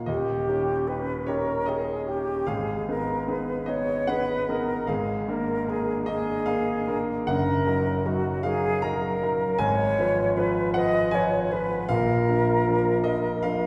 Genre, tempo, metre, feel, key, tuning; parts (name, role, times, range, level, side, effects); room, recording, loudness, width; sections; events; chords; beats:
classical, romantic duo for flute and grand piano; 76 BPM; 3/4; uneven beats, rubato; Eb minor; A4 = 443 Hz
clear grand piano; accompaniment; 0.0-13.7 s; Eb1 to Bb5; -28 LUFS; equal
mellow silver concert flute; melody; 0.1-13.7 s; Gb4 to Eb5; -29 LUFS; equal
wet recital hall reverb, RT60 1.5 s; recorded in a church or concert hall; -25 LUFS; mono
0.1-13.7 A section
0.1 Eb7; 2.5 Abm; 4.9 Bb7/Ab; 7.3 Ebm/Gb; 9.6 Fdim/Ab; 11.9 Bb
| 0.08 0.88 1.69 | 2.49 3.29 4.08 | 4.89 5.68 6.48 | 7.28 8.06 8.83 | 9.61 10.38 11.14 | 11.91 12.67 13.43